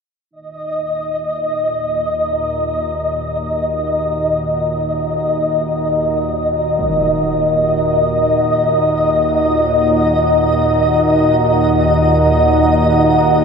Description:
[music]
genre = dark ambient drone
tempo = free time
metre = none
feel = none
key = Eb minor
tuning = A4 = 440 Hz
[part]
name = dark analog pad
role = sustained chords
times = 0.3-13.4 s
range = Eb4 to Bb5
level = -21 LUFS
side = right 2 dB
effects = chorus
[part]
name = bowed-like drone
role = drone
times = 0.8-13.4 s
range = Eb2 to Bb2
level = -19 LUFS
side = right 1 dB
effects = built-in reverb
[part]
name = flickering grainy texture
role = texture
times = 0.5-13.4 s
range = Eb5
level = -16 LUFS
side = left 1 dB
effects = built-in reverb
[part]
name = impact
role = percussion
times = 6.8-7.0 s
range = none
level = -31 LUFS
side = equal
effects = low-pass filter on sfx
[sound]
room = wet huge ambient reverb, RT60 9.1 s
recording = none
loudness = -13 LUFS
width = side -6 dB against mid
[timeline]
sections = 0.3-13.4 A section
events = fade-in on synth drone 0.3-13.4; fade-in on analog synth pad 0.3-13.4; fade-in on impacts and reversed cymbals 0.3-13.4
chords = 0.3 Ebm

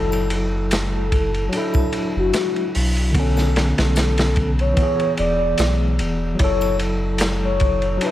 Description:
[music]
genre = trip hop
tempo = 74 BPM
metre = 4/4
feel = swing 54% on 16ths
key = F# minor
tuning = A4 = 440 Hz
[part]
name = pure breathy sine lead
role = melody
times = 0.0-8.1 s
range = F#4 to D5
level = -24 LUFS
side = left 1 dB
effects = wide subtle chorus, tape echo
[part]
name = overdriven tine electric piano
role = accompaniment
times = 0.0-8.1 s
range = D3 to A4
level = -24 LUFS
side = equal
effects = tremolo
[part]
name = soft dub sub bass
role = bass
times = 0.0-8.0 s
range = E1 to B1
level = -21 LUFS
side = equal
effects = tube saturation
[part]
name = crunchy breakbeat drum kit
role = drums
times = 0.1-8.1 s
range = hi-hat, kick drum, ride cymbal, snare drum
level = -22 LUFS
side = equal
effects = none
[part]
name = triangle and maracas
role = percussion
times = 0.1-7.4 s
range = none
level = -38 LUFS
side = left 3 dB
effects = none
[sound]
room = small room reverb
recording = vinyl crackle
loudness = -17 LUFS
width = side -13 dB against mid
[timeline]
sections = 0.0-8.1 A section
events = none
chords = 0.0 F#m7; 1.5 Dadd9/F#; 3.1 Bmadd9; 4.8 E; 6.4 F#m7

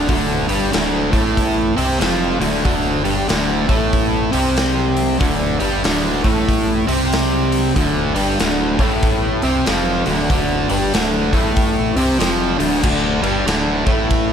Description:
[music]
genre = blues rock power trio and southern rock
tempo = 94 BPM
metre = 4/4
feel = swing 62% on 8ths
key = D minor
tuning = A4 = 440 Hz
[part]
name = cranked stack guitar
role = riff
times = 0.0-14.3 s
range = D2 to C4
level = -17 LUFS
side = equal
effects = overdrive
[part]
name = gritty driven synth bass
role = bass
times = 0.0-14.3 s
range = D1 to C2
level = -22 LUFS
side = equal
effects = distortion
[part]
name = raw garage drum kit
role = drums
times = 0.1-14.3 s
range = crash cymbal, hi-hat, kick drum, ride cymbal, snare drum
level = -21 LUFS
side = equal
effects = none
[sound]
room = studio ambience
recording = none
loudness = -15 LUFS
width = side -8 dB against mid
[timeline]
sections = 0.0-12.8 A section; 12.8-14.3 A section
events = none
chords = 0.0 Dm; 12.8 D5

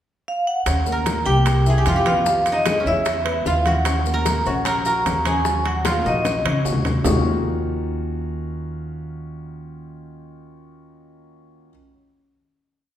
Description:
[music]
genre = Afro-Cuban jazz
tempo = 150 BPM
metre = 4/4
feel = straight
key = Eb minor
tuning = A4 = 440 Hz
[part]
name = vibraphone with medium hard mallets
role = melody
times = 0.3-6.6 s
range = Db5 to Bb5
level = -22 LUFS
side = right 1 dB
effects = none
[part]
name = warm concert grand piano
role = accompaniment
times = 0.7-11.7 s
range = D#3 to Gb5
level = -27 LUFS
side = left 3 dB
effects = none
[part]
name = upright bass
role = bass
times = 0.7-11.7 s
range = Bb1 to F2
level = -24 LUFS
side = equal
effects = none
[part]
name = bongos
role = percussion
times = 0.7-7.1 s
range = none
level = -30 LUFS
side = left 4 dB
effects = none
[part]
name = congas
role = percussion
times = 0.7-7.1 s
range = none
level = -28 LUFS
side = left 1 dB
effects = none
[part]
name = maracas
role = percussion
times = 0.7-7.1 s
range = none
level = -36 LUFS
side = left 6 dB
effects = none
[part]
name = timbales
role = percussion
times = 0.7-7.1 s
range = none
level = -29 LUFS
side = right 5 dB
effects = none
[part]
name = koto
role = second line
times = 0.9-8.4 s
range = Db4 to Bb4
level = -27 LUFS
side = equal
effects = none
[sound]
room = wet recital hall reverb, RT60 1.5 s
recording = recorded in a church or concert hall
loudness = -18 LUFS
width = side -11 dB against mid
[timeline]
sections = 0.0-0.7 pickup bar; 0.7-7.0 A section; 7.0-10.2 final chord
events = drum fill 5.9-7.0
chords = 0.0 N.C.; 0.7 Eb5; 1.5 C7; 2.3 Emaj7; 3.1 E5; 3.9 Ebm7; 7.0 Ebm9

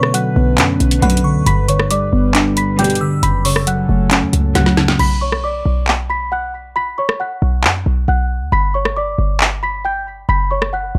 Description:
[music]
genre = hip hop, trap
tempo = 136 BPM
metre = 4/4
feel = half-time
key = B minor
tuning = A4 = 441 Hz
[part]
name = small celesta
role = melody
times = 0.0-11.0 s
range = C#5 to B6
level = -23 LUFS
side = equal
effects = digital delay
[part]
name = muted felt-like synth keys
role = accompaniment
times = 0.0-5.0 s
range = F#2 to D4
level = -19 LUFS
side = equal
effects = chorus
[part]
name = warbly tape-like pad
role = sustained chords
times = 0.0-5.0 s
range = D3 to B4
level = -28 LUFS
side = equal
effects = chorus, built-in reverb
[part]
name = trap drum kit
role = drums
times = 0.0-10.7 s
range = crash cymbal, handclaps, hi-hat, rim click, snare drum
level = -19 LUFS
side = equal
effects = none
[part]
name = short 808-style bass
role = bass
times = 0.4-11.0 s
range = F#1 to F#2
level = -20 LUFS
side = equal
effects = none
[part]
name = glassy synth bell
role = second line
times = 1.0-3.2 s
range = B5 to E6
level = -32 LUFS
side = equal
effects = chorus, digital delay
[part]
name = warm chamber string section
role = stabs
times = 1.0-4.9 s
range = F#2 to G3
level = -23 LUFS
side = equal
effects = none
[sound]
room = little or no reverb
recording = none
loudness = -16 LUFS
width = mono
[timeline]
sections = 0.0-5.0 A section; 5.0-11.0 B section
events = drum fill 4.6-5.0; break 5.0-11.0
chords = 0.0 Bmadd9; 1.5 G; 3.2 F#m; 5.0 Bmadd9; 8.5 G; 10.3 F#5

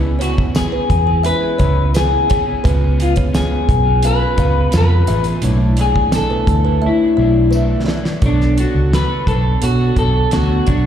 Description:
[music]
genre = indie pop, bedroom pop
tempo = 86 BPM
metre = 4/4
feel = straight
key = B dorian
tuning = A4 = 440 Hz
[part]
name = electric guitar at the edge of break-up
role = accompaniment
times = 0.0-10.9 s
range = B2 to C#5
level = -24 LUFS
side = equal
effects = lush chorus, vibrato effect, slapback echo
[part]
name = mellow reed electric piano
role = accompaniment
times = 0.0-10.9 s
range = G#3 to C#5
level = -25 LUFS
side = right 3 dB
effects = cassette tape, slapback echo
[part]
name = vintage muted fingered electric bass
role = bass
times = 0.0-10.9 s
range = A1 to B2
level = -16 LUFS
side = equal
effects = none
[part]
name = electric guitar through a small old amp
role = melody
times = 0.2-10.9 s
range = D4 to B4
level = -18 LUFS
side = left 2 dB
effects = wide subtle chorus, plate reverb, slapback echo, ping-pong delay
[part]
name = kalimba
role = second line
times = 0.2-8.0 s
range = B4 to E#5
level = -28 LUFS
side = right 2 dB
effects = lush chorus, plate reverb, slapback echo, ping-pong delay
[part]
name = damped 70s drum kit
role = drums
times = 0.2-10.8 s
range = hi-hat, kick drum, snare drum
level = -19 LUFS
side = equal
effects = none
[part]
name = tambourine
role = percussion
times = 0.5-7.7 s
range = none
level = -36 LUFS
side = left 3 dB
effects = none
[sound]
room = light reverb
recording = live gig heard through the venue's PA, recital hall reverb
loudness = -13 LUFS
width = side -9 dB against mid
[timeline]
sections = 0.0-8.2 A section; 8.2-10.9 B section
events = drum fill 6.8-8.2; clean electric guitar solo 8.2-10.9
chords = 0.0 C#m7; 2.6 C#7; 5.4 Bm11; 8.2 Bm9

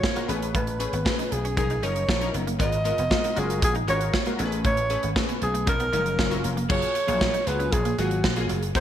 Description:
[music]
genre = early-eighties boogie funk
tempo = 117 BPM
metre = 4/4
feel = straight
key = unclear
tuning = A4 = 444 Hz
[part]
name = breathy alto saxophone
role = melody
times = 0.0-8.8 s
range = F#4 to D#5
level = -27 LUFS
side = right 1 dB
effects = none
[part]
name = funky polysynth comp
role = accompaniment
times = 0.0-8.8 s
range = E#3 to B4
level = -30 LUFS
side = left 4 dB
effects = chorus
[part]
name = clean electric guitar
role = riff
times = 0.0-8.8 s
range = F#3 to F#4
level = -36 LUFS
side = right 5 dB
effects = wide subtle chorus
[part]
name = modern studio drum kit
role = drums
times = 0.0-8.8 s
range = crash cymbal, hi-hat, kick drum, snare drum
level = -27 LUFS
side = equal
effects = gated reverb
[part]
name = vintage slap bass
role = bass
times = 0.3-8.8 s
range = E#1 to C#2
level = -28 LUFS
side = equal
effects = none
[sound]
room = light reverb, small room ambience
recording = bright 1980s-style digital production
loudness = -22 LUFS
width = side -10 dB against mid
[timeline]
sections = 0.0-6.7 A section; 6.7-8.8 B section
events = none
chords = 0.3 Amaj9; 1.6 Bmaj9#11; 2.6 G#m69; 3.4 F#maj9; 4.4 Amaj9; 5.7 Bmaj9#11; 6.2 F#maj7; 6.7 F#maj9

